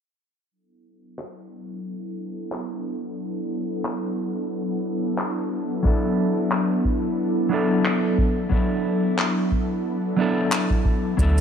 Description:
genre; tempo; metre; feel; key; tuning
sunset chillout; 90 BPM; 4/4; swing 56% on 16ths; D major; A4 = 440 Hz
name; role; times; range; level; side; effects
ethereal airy pad; sustained chords; 1.5-11.4 s; F#3 to B5; -26 LUFS; equal; ensemble chorus, built-in reverb
electronic handclaps and shaker; drums; 1.2-11.4 s; none; -27 LUFS; left 1 dB; overdrive
mellow electric guitar; accompaniment; 5.8-11.4 s; F#3 to A4; -23 LUFS; equal; auto-pan, ping-pong delay
electronic kick drum; drums; 5.9-11.3 s; none; -22 LUFS; equal; none
round analog bass; bass; 11.2-11.4 s; D2; -17 LUFS; equal; none
room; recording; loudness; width
light reverb, digital ambience; low-pass filter; -21 LUFS; side -8 dB against mid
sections
0.5-11.2 A section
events
filter sweep on ambient pad 0.5-11.2; filter sweep 0.5-11.2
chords
0.5 D69

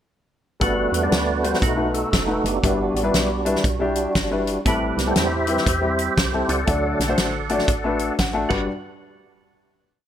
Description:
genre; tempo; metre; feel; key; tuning
uptempo gospel; 119 BPM; 4/4; swing 63% on 8ths; G major; A4 = 437 Hz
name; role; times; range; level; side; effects
warm upright piano; accompaniment; 0.6-8.7 s; G2 to F#5; -24 LUFS; left 3 dB; none
percussive tonewheel organ; sustained chords; 0.6-8.7 s; F#3 to F#5; -24 LUFS; right 2 dB; slow rotary speaker, chorus vibrato
woody FM bass; bass; 0.6-8.7 s; F1 to E2; -28 LUFS; equal; none
natural country drum kit; drums; 0.6-8.6 s; crash cymbal, hi-hat, kick drum, snare drum; -23 LUFS; equal; none
room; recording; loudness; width
light reverb, small room reverb; none; -19 LUFS; side -10 dB against mid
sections
0.6-8.7 verse; 8.7-10.1 final hit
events
tonewheel organ solo 0.6-8.7; upright piano fill 7.9-8.7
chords
0.6 Gmaj7; 1.6 B7; 2.6 Em7/G; 4.7 Am7; 6.7 D; 8.4 Gmaj7; 8.7 N.C.

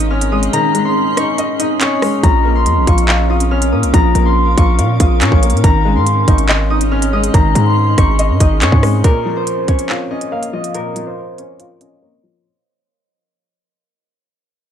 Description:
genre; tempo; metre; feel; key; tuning
hip hop, drill; 141 BPM; 4/4; half-time; Bb minor; A4 = 440 Hz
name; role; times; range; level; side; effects
concert harp; melody; 0.0-13.9 s; Bb4 to F6; -19 LUFS; left 2 dB; low-pass filter, ping-pong delay
felt-muted upright piano; accompaniment; 0.0-12.5 s; Bb2 to F5; -19 LUFS; left 4 dB; low-pass filter
granular cloud pad; sustained chords; 0.0-9.0 s; Db4 to F5; -22 LUFS; right 2 dB; built-in reverb
hard-hitting 808-style bass; bass; 0.0-9.0 s; Ab1 to Bb2; -14 LUFS; right 1 dB; none
drill drum kit; drums; 0.0-11.9 s; handclaps, hi-hat, kick drum, rim click; -14 LUFS; right 1 dB; none
room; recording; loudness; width
little or no reverb; none; -11 LUFS; side -9 dB against mid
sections
0.0-9.0 A section; 9.0-12.4 B section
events
kick muted 0.5-2.2; fade-out 9.0-12.4; filter sweep 9.0-12.4; break 12.0-12.4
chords
0.0 Absus4; 2.2 Bbm; 5.6 Absus4; 9.0 Bbm

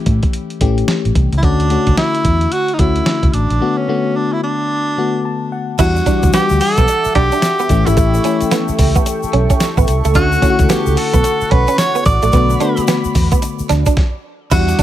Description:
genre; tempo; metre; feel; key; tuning
R&B, new jack swing; 110 BPM; 4/4; swing 62% on 16ths; unclear; A4 = 440 Hz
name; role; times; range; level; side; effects
warm tenor saxophone; melody; 0.0-14.8 s; C#4 to D5; -18 LUFS; right 1 dB; none
FM electric piano; accompaniment; 0.0-14.8 s; D3 to A5; -20 LUFS; left 5 dB; chorus
vintage muted fingered electric bass; bass; 0.1-14.7 s; G#1 to A2; -16 LUFS; equal; none
dusty soul sampler-style drum kit; drums; 0.1-14.8 s; crash cymbal, hi-hat, kick drum, snare drum, tambourine; -16 LUFS; equal; none
warm analog pad; sustained chords; 5.8-14.8 s; G3 to D6; -23 LUFS; right 1 dB; chorus
direct-recorded clean electric guitar; riff; 5.8-14.8 s; A3 to E4; -22 LUFS; right 9 dB; ensemble chorus
tube shaker; percussion; 5.8-14.8 s; none; -31 LUFS; left 10 dB; none
room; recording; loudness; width
little or no reverb; none; -12 LUFS; side -12 dB against mid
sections
0.0-5.8 A section; 5.8-14.5 B section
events
break 3.6-5.8; FM electric piano fill 5.0-5.8; stop 14.0-14.5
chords
0.0 A7; 1.4 Dmaj7; 3.6 Bm7; 5.8 Em9; 7.7 A7; 10.2 Dmaj7; 12.3 Bm7

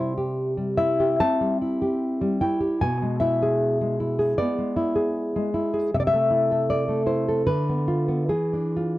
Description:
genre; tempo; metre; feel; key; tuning
romantic piece for solo classical guitar; 65-79 BPM; 4/4; rubato; unclear; A4 = 440 Hz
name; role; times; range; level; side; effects
nylon-string guitar; solo; 0.0-9.0 s; B2 to A5; -21 LUFS; equal; none
room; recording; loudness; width
light reverb; dry, close 1970s-style studio recording, faint mains hum; -21 LUFS; side -16 dB against mid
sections
0.0-9.0 A section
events
none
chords
0.0 C; 2.8 E7/B; 5.9 Am/C; 7.5 Bdim/D; 8.3 E7b9

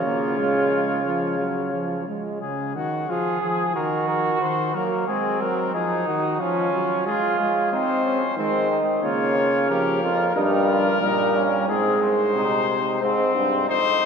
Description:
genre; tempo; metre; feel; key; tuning
classical, imitative canzona for brass ensemble; 90 BPM; 4/4; straight; Db major; A4 = 440 Hz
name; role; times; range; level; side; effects
warm trumpet; melody; 0.0-14.1 s; F4 to Db5; -25 LUFS; left 6 dB; none
warm flugelhorn; second line; 0.0-14.1 s; Bb3 to Ab4; -25 LUFS; right 3 dB; none
clear trombone; accompaniment; 0.0-13.0 s; Db3 to C4; -27 LUFS; right 2 dB; none
warm euphonium; bass; 0.0-2.0, 8.4-14.1 s; F2 to Eb3; -24 LUFS; right 1 dB; none
room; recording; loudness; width
wet cathedral reverb, RT60 4.9 s; minimal, uncompressed stereo recording; -20 LUFS; side -6 dB against mid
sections
0.0-2.4 A section; 2.4-13.0 B section; 13.0-14.1 C section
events
none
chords
0.0 Db; 3.8 Ebm; 5.1 Ab; 6.4 Db/F; 7.7 Ab/C; 9.0 Bbm/Db; 10.4 Eb/G; 11.7 Ab; 13.0 Fm

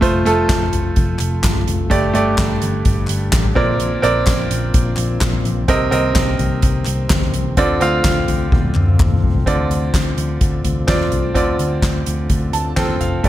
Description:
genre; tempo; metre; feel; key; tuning
piano-driven pop; 127 BPM; 4/4; straight; unclear; A4 = 439 Hz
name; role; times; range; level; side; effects
bright grand piano; accompaniment; 0.0-13.3 s; G2 to A5; -19 LUFS; right 2 dB; none
percussive tonewheel organ; sustained chords; 0.0-13.2 s; C3 to G4; -26 LUFS; left 2 dB; chorus vibrato, slow rotary speaker
vintage muted picked electric bass; bass; 0.0-13.3 s; F1 to Eb2; -21 LUFS; equal; none
soft-mallet drum kit; drums; 0.0-13.3 s; crash cymbal, handclaps, hi-hat, kick drum, snare drum, toms; -18 LUFS; left 1 dB; none
group handclap; percussion; 0.5-9.1 s; none; -30 LUFS; left 4 dB; none
room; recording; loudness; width
light reverb, small room ambience; none; -14 LUFS; side -13 dB against mid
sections
0.0-9.5 A section; 9.5-13.2 B section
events
drum fill 8.5-9.5; grand piano fill 12.3-13.2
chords
0.0 F; 1.9 Gsus2; 3.6 Bbadd9; 5.7 Cm7; 7.6 Dm7

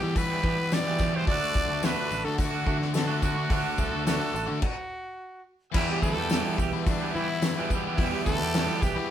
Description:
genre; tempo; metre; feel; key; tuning
indie rock; 107 BPM; 4/4; straight; E minor; A4 = 442 Hz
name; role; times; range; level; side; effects
growling trumpet; melody; 0.0-9.1 s; D4 to D5; -31 LUFS; equal; none
bright tonewheel organ; sustained chords; 0.0-9.1 s; A4 to E6; -43 LUFS; equal; none
biting overdriven guitar; riff; 0.0-9.1 s; E2 to G4; -34 LUFS; left 7 dB; none
twangy electric guitar; riff; 0.0-9.1 s; E2 to G4; -31 LUFS; right 6 dB; none
growling fingered electric bass; bass; 0.0-9.1 s; A1 to E3; -32 LUFS; left 1 dB; overdrive
loose indie drum kit; drums; 0.2-9.0 s; crash cymbal, hi-hat, kick drum, snare drum; -29 LUFS; equal; none
tambourine; percussion; 0.2-9.0 s; none; -45 LUFS; left 7 dB; none
room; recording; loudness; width
moderate studio reverb, RT60 0.6 s; band playing live in one room; -24 LUFS; side -10 dB against mid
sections
0.0-5.7 A section; 5.7-9.1 B section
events
stop 4.6-5.7; trumpet solo 5.7-9.1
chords
0.0 Em; 1.3 D; 5.7 Em

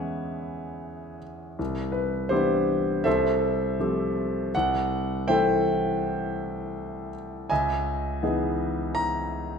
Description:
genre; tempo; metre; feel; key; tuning
classical, impressionist solo piano; 82 BPM; 4/4; rubato; unclear; A4 = 441 Hz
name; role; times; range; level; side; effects
clear grand piano; solo; 0.0-9.6 s; C2 to Bb5; -24 LUFS; equal; none
room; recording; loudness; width
wet recital hall reverb, RT60 1.5 s; minimal, uncompressed stereo recording; -24 LUFS; side -6 dB against mid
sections
0.0-9.6 A section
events
none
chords
0.0 C#m7/E; 1.6 Cmaj9; 3.1 Fmaj9/C; 4.5 Am7/C; 7.5 Dbm9

